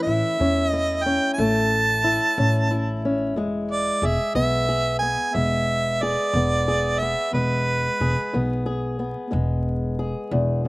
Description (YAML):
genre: acoustic country blues, solo or duo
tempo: 60 BPM (dotted quarters)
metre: 12/8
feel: straight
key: E major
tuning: A4 = 441 Hz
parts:
  - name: warm harmonica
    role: melody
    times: 0.0-8.6 s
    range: B4 to A5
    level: -22 LUFS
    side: right 2 dB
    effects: none
  - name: fingerpicked old ladder-braced acoustic guitar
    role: accompaniment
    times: 0.0-10.7 s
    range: E2 to G#4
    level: -25 LUFS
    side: left 2 dB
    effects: none
  - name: upright bass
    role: bass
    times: 0.1-10.7 s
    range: E1 to E2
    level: -25 LUFS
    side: equal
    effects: none
room: little or no reverb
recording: recorded outdoors, with no room sound, vinyl crackle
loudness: -20 LUFS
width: side -21 dB against mid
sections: 0.0-10.7 A section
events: none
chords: 0.0 A; 3.4 E